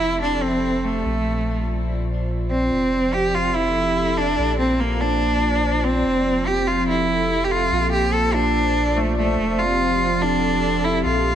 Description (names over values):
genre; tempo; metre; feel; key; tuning
IDM; 144 BPM; 4/4; straight; F major; A4 = 440 Hz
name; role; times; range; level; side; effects
rich cello; melody; 0.0-11.3 s; A3 to A4; -20 LUFS; right 1 dB; ping-pong delay
hollow soft pad; sustained chords; 0.0-11.3 s; Bb2 to D5; -25 LUFS; equal; chorus
warm sub bass; bass; 0.0-11.3 s; F1 to Bb1; -26 LUFS; left 1 dB; none
room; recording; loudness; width
moderate lush hall reverb, RT60 2.0 s; heavily compressed radio sound, multiband compression; -18 LUFS; side -10 dB against mid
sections
0.0-11.3 A section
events
filter sweep on analog synth pad 0.0-11.3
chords
0.0 Fmaj9; 1.1 Bbmaj9; 2.7 Fmaj9; 4.4 Bbmaj9; 6.1 Fmaj9; 7.7 Bbmaj9; 9.4 Fadd9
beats
0.22 0.64 | 1.05 1.47 1.89 2.30 | 2.72 3.14 3.55 3.97 | 4.39 4.80 5.22 5.64 | 6.05 6.47 6.89 7.30 | 7.72 8.14 8.55 8.97 | 9.39 9.80 10.22 10.64 | 11.05